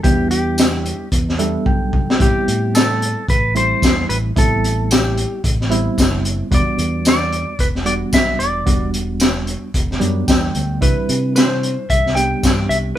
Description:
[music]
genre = straight-eighth soul blues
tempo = 111 BPM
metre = 4/4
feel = swing 55% on 16ths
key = E minor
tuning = A4 = 439 Hz
[part]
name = clean lap steel guitar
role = melody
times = 0.0-13.0 s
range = G4 to G5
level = -20 LUFS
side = left 1 dB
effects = none
[part]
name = reed electric piano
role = accompaniment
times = 0.0-13.0 s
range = F#3 to G5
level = -22 LUFS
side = right 2 dB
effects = harmonic tremolo
[part]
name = fingered electric bass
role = bass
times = 0.0-12.9 s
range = E1 to C3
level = -21 LUFS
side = equal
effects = none
[part]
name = crunchy breakbeat drum kit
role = drums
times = 0.0-12.8 s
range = hi-hat, kick drum, snare drum, tambourine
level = -17 LUFS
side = equal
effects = none
[sound]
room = light reverb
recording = band playing live in one room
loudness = -14 LUFS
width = side -11 dB against mid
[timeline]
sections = 0.0-13.0 A section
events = reed electric piano fill 1.1-2.2, 9.7-10.8; drum fill 1.7-2.2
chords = 0.0 Em7; 2.2 Am9; 6.5 Em9; 10.8 Cmaj7

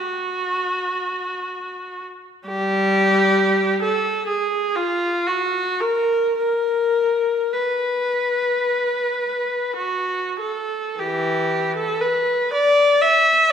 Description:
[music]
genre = classical, free, expressive piece for unaccompanied viola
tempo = 42-69 BPM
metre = 4/4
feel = rubato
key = unclear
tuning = A4 = 435 Hz
[part]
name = rich viola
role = solo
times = 0.0-13.5 s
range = E3 to E5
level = -18 LUFS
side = equal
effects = none
[sound]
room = moderate scoring stage reverb, RT60 1.7 s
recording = recorded in a church or concert hall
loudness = -18 LUFS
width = side -8 dB against mid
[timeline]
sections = 0.0-11.0 A section; 11.0-13.5 B section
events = none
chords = none

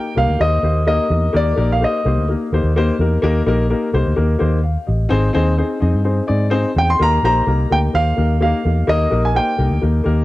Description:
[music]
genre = uptempo 1960s-style soul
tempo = 127 BPM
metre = 4/4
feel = straight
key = Eb major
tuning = A4 = 440 Hz
[part]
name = clear baby grand piano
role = melody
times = 0.0-2.3, 6.8-9.8 s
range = D5 to C6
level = -19 LUFS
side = equal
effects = tape echo
[part]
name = dark upright piano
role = accompaniment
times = 0.0-10.2 s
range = Bb3 to F5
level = -20 LUFS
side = left 2 dB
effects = none
[part]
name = vintage muted fingered electric bass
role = bass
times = 0.2-10.2 s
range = Ab1 to Ab2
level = -17 LUFS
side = equal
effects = none
[sound]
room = small room ambience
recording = none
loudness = -14 LUFS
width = side -17 dB against mid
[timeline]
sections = 0.0-10.2 A section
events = none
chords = 0.0 Eb; 5.1 Ab; 7.0 Eb

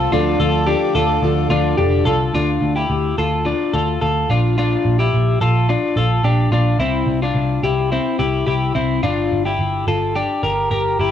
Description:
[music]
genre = indie pop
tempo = 108 BPM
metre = 4/4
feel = straight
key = D minor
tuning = A4 = 441 Hz
[part]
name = fingerpicked plugged-in steel-string acoustic guitar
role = accompaniment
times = 0.0-2.9 s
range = D3 to A4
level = -22 LUFS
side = right 8 dB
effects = none
[part]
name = string machine, cellos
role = sustained chords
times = 0.0-2.3 s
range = A4 to D6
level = -30 LUFS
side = right 1 dB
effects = phaser, ensemble chorus
[part]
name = twelve-string electric guitar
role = arpeggios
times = 0.0-11.1 s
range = C4 to Bb4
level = -18 LUFS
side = left 3 dB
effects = tape echo
[part]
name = vintage muted picked electric bass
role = bass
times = 0.0-11.1 s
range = F1 to D2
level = -19 LUFS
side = equal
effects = none
[sound]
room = light reverb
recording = home recording on cassette, studio ambience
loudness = -15 LUFS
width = side -9 dB against mid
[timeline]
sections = 0.0-2.3 A section; 2.3-11.1 B section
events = none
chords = 0.0 F/D; 2.3 Dm; 4.3 Bb; 6.8 C; 9.0 Gm

